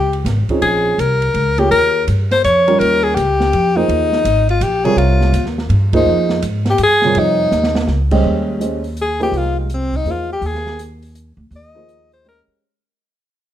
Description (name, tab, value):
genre	modal jazz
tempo	165 BPM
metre	3/4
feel	swing 65% on 8ths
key	unclear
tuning	A4 = 441 Hz
part	bright alto saxophone	melody	0.0-12.4 s	Ab3 to Eb5	-15 LUFS	left 2 dB	none
part	upright bass	bass	0.0-12.5 s	Ab1 to Ab2	-18 LUFS	equal	none
part	open jazz drum kit	drums	0.1-12.4 s	crash cymbal, hi-hat, kick drum, ride cymbal, snare drum	-26 LUFS	right 2 dB	none
part	dark baby grand piano	accompaniment	0.5-12.6 s	C3 to Eb5	-19 LUFS	right 3 dB	none
room	moderate large studio reverb, RT60 1.0 s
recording	none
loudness	-13 LUFS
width	side -11 dB against mid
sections	0.0-8.2 A section; 8.2-12.6 B section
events	band accent 5.9; drum fill 7.5-7.9; fade-out 8.2-12.6; alto saxophone solo 8.2-12.6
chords	0.0 Eb9; 8.2 Fm7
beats	0.26 | 0.62 0.98 1.35 | 1.71 2.07 2.44 | 2.80 3.16 3.52 | 3.89 4.25 4.61 | 4.98 5.34 5.70 | 6.07 6.43 6.79 | 7.16 7.52 7.88 | 8.25 8.61 8.97 | 9.34 9.70 10.06 | 10.43 10.79 11.16 | 11.52 11.88 12.25